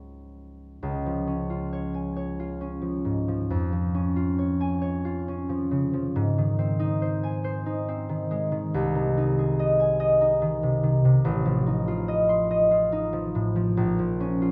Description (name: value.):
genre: classical, solo harp piece.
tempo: 42-49 BPM (dotted quarters).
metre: 6/8.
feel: rubato.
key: Db major.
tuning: A4 = 440 Hz.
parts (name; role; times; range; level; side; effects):
concert harp; solo; 0.0-14.5 s; A1 to C6; -25 LUFS; equal; none.
room: moderate scoring stage reverb, RT60 1.8 s.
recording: none.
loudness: -25 LUFS.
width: mono.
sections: 0.8-14.5 A section.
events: none.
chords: 0.0 Db; 3.5 Db/F; 6.2 Ab; 8.7 Ab/C; 11.2 F7/A; 13.8 Bbm.